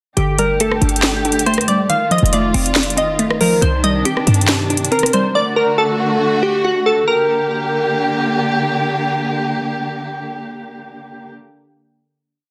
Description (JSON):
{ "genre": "hip hop, trap", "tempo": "139 BPM", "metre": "4/4", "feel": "half-time", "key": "G minor", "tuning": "A4 = 440 Hz", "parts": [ { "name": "glassy digital keys", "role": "melody", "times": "0.2-8.3 s", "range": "F#4 to F5", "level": "-20 LUFS", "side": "equal", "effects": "chorus, phaser, digital delay" }, { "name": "glassy wavetable pluck", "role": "accompaniment", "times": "0.2-5.4 s", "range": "D3 to D4", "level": "-22 LUFS", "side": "equal", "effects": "chorus" }, { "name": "dark chamber string section", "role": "sustained chords", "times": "0.2-11.3 s", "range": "C3 to G4", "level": "-23 LUFS", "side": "equal", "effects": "none" }, { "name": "short 808-style bass", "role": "bass", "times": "0.2-4.9 s", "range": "F1 to G2", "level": "-21 LUFS", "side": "equal", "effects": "none" }, { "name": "trap drum kit", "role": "drums", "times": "0.2-5.2 s", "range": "handclaps, hi-hat, rim click, snare drum", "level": "-20 LUFS", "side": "equal", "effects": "none" } ], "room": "moderate plate reverb, RT60 1.2 s, digital ambience", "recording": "dense, heavily limited modern master", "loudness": "-16 LUFS", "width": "mono", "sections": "0.2-7.1 hook; 7.1-10.5 final chord", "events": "none", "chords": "0.2 Gsus2; 1.9 F7; 3.6 Cmadd9; 5.3 D; 7.1 Gm" }